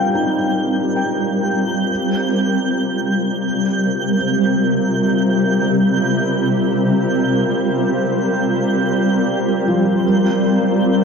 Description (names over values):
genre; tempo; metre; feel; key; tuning
ambient; free time; none; none; unclear; A4 = 440 Hz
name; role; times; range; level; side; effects
shimmering ambient pad; sustained chords; 0.0-11.0 s; C3 to Bb4; -16 LUFS; equal; chorus, built-in reverb, shimmer reverb
felt-muted upright piano; arpeggios; 0.0-11.0 s; F3 to G5; -23 LUFS; left 1 dB; ping-pong delay, shimmer reverb
twinkling granular texture; texture; 0.0-11.0 s; G6; -26 LUFS; right 4 dB; built-in reverb, shimmer reverb
room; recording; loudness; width
wet lush hall reverb, RT60 2.6 s; worn, warbling old tape, cassette tape, warbly pitch drift; -15 LUFS; side -5 dB against mid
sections
0.0-11.0 A section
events
none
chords
0.0 Cm11; 1.9 Eb/C; 10.0 C7sus4